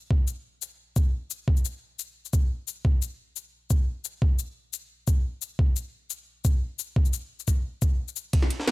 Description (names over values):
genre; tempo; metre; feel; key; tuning
drum and bass; 175 BPM; 4/4; swing 53% on 16ths; none; none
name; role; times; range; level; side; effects
electronic kick drum; drums; 0.1-8.4 s; none; -22 LUFS; equal; none
drum and bass drum kit; drums; 0.3-8.7 s; hi-hat, shaker, snare drum; -31 LUFS; left 4 dB; none
breakbeat sampler-style drum kit; drums; 8.3-8.7 s; ride cymbal, snare drum; -32 LUFS; right 1 dB; high-pass filter on cymbals, high-pass filter on snare
room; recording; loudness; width
little or no reverb; faint mains hum; -24 LUFS; side -20 dB against mid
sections
0.0-8.3 A section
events
none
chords
none